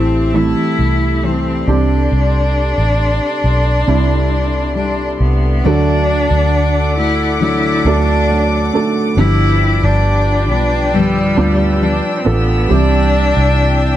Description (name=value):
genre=pop ballad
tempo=68 BPM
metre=4/4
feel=straight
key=unclear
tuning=A4 = 440 Hz
part: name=clear cello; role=melody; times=0.0-14.0 s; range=G3 to E4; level=-17 LUFS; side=left 1 dB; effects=none
part: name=felt-muted upright piano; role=accompaniment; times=0.0-14.0 s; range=G2 to A4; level=-20 LUFS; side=right 6 dB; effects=none
part: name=dark symphonic string section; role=sustained chords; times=0.0-14.0 s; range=C4 to E6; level=-24 LUFS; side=left 1 dB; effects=none
part: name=fingerpicked steel-string acoustic guitar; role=arpeggios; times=0.0-14.0 s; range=G2 to G4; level=-21 LUFS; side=left 5 dB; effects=none
part: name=vintage muted fingered electric bass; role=bass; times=0.0-14.0 s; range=G1 to D2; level=-15 LUFS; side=equal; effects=none
room=studio reverb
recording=dark, warm production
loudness=-12 LUFS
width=side -12 dB against mid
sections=0.0-5.6 A section; 5.6-14.0 B section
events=none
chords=0.0 Am7; 1.7 Csus2; 5.6 D; 9.2 G7; 12.7 C